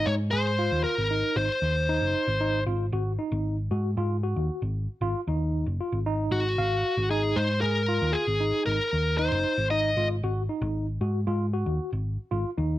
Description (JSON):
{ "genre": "progressive instrumental, progressive", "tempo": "115 BPM", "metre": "7/4", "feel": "straight", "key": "Ab mixolydian", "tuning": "A4 = 440 Hz", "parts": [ { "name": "smooth overdriven lead guitar", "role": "melody", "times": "0.0-10.1 s", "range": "Gb4 to Eb5", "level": "-26 LUFS", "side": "left 1 dB", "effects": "none" }, { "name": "tine electric piano", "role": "arpeggios", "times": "0.0-12.8 s", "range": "Eb4 to F5", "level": "-31 LUFS", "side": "equal", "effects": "fast stereo tremolo" }, { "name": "hollow-body short-scale picked electric bass", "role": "bass", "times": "0.0-12.8 s", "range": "Gb1 to Ab2", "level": "-27 LUFS", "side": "equal", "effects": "none" } ], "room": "studio reverb", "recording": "1960s-style stereo", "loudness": "-24 LUFS", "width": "side -14 dB against mid", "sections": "0.0-12.8 A section", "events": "none", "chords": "0.0 Ab7(no3)" }